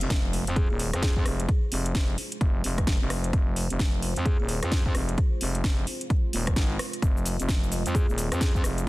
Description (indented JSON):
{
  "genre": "bass house",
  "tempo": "130 BPM",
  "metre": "4/4",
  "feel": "swing 61% on 16ths",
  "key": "F minor",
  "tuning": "A4 = 440 Hz",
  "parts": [
    { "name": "dark analog pad", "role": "sustained chords", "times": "0.0-8.9 s", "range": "Ab3 to Eb5", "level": "-39 LUFS", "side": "right 2 dB", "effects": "chorus, sidechain pumping" },
    { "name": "growling FM bass", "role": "bass", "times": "0.0-8.9 s", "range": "Eb1 to F2", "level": "-28 LUFS", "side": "equal", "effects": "overdrive, sidechain pumping" },
    { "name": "house drum kit", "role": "drums", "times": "0.0-8.9 s", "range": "hi-hat, rim click, shaker, snare drum", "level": "-32 LUFS", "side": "equal", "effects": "overdrive" },
    { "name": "sub drop", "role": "sound effects", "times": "0.0-1.5 s", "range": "none", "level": "-37 LUFS", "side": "equal", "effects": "none" },
    { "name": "electronic kick drum", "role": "drums", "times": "0.1-8.6 s", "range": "none", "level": "-24 LUFS", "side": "equal", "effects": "overdrive" },
    { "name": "buzzing kalimba", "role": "melody", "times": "0.6-8.9 s", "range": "F4 to Ab4", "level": "-39 LUFS", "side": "equal", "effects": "none" }
  ],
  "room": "little or no reverb",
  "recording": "dense, heavily limited modern master",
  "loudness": "-23 LUFS",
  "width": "side -19 dB against mid",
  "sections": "0.0-8.9 A section",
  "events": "impact 0.0-1.5",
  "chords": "0.0 Fm",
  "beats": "0.10 0.56 1.02 | 1.49 1.95 2.41 2.87 | 3.33 3.79 4.26 4.72 | 5.18 5.64 6.10 6.56 | 7.03 7.49 7.95 8.41 | 8.87"
}